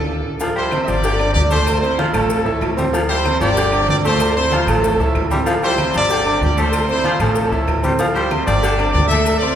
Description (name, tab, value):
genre	latin, salsa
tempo	190 BPM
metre	4/4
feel	straight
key	D minor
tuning	A4 = 440 Hz
part	raspy baritone saxophone	second line	0.4-9.4 s	D3 to A3	-24 LUFS	left 2 dB	none
part	clear grand piano	accompaniment	0.4-9.6 s	F3 to G6	-21 LUFS	right 2 dB	none
part	agogo bells and timbales	percussion	0.4-9.4 s	none	-26 LUFS	right 2 dB	none
part	congas	percussion	0.4-9.6 s	none	-27 LUFS	left 1 dB	none
part	cowbell	percussion	0.4-9.4 s	none	-27 LUFS	left 2 dB	none
part	maracas	percussion	0.4-9.6 s	none	-38 LUFS	left 6 dB	none
part	brilliant trumpet section	melody	0.6-9.6 s	C#4 to E5	-20 LUFS	equal	none
part	claves	percussion	0.7-9.4 s	none	-37 LUFS	left 3 dB	none
part	upright bass	bass	0.9-9.6 s	G1 to D2	-22 LUFS	equal	none
room	wet church reverb, RT60 3.3 s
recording	recorded in a church or concert hall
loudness	-14 LUFS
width	side -9 dB against mid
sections	0.4-9.6 A section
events	drum fill 0.0-0.4; band accent 0.0-0.4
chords	0.4 Dm11; 1.0 Gsus2; 1.7 Dm7; 2.3 A; 2.9 Dm7; 3.6 Gsus2; 4.2 Dm7; 4.8 A; 5.5 Dm7; 6.1 Gsus2; 6.7 Dm7; 7.4 A; 8.0 Dm7; 8.6 Gsus2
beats	0.08 | 0.40 0.72 1.03 1.35 | 1.67 1.98 2.30 2.62 | 2.93 3.25 3.56 3.88 | 4.20 4.51 4.83 5.15 | 5.46 5.78 6.10 6.41 | 6.73 7.05 7.36 7.68 | 7.99 8.31 8.63 8.94 | 9.26